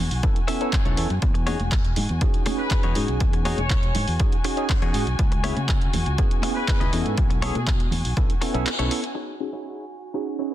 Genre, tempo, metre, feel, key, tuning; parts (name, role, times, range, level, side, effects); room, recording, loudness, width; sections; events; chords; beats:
filtered disco house; 121 BPM; 4/4; straight; E major; A4 = 438 Hz
muted chamber string section; sustained chords; 0.0-10.5 s; F#4 to G#5; -34 LUFS; left 3 dB; sidechain pumping, low-pass filter
fingered electric bass; bass; 0.0-8.9 s; E1 to C#3; -26 LUFS; equal; sidechain pumping, low-pass filter
punchy analog drum machine; drums; 0.1-9.1 s; handclaps, hi-hat; -31 LUFS; right 1 dB; sidechain pumping on hats
tambourine and congas; percussion; 0.1-9.1 s; -35 LUFS; right 2 dB
tine electric piano; accompaniment; 0.2-10.5 s; B3 to A4; -29 LUFS; right 2 dB; medium stereo tremolo, phaser, vintage 12-bit sampler grit, sidechain pumping, low-pass filter
electronic kick drum; drums; 0.2-8.3 s; -22 LUFS; equal
direct-recorded clean electric guitar; riff; 0.5-10.5 s; D#4 to G#5; -33 LUFS; left 4 dB; sidechain pumping, low-pass filter
bright trumpet section; melody; 2.6-10.5 s; G#4 to C#5; -33 LUFS; left 2 dB; sidechain pumping, low-pass filter, digital delay
little or no reverb; dense, heavily limited modern master; -20 LUFS; side -13 dB against mid
0.0-9.2 A section; 9.2-10.5 B section
clean electric guitar fill 0.2-1.2; kick drops out 8.7-9.2; band accent 8.7; filter sweep 9.2-10.5
0.0 B9sus4; 1.2 Emaj13; 5.2 C#m7; 7.2 B9sus4; 9.2 Emaj13
0.23 0.73 | 1.23 1.72 2.22 2.71 | 3.21 3.71 4.20 4.70 | 5.19 5.69 6.18 6.68 | 7.18 7.67 8.17 8.66 | 9.16 9.65 10.15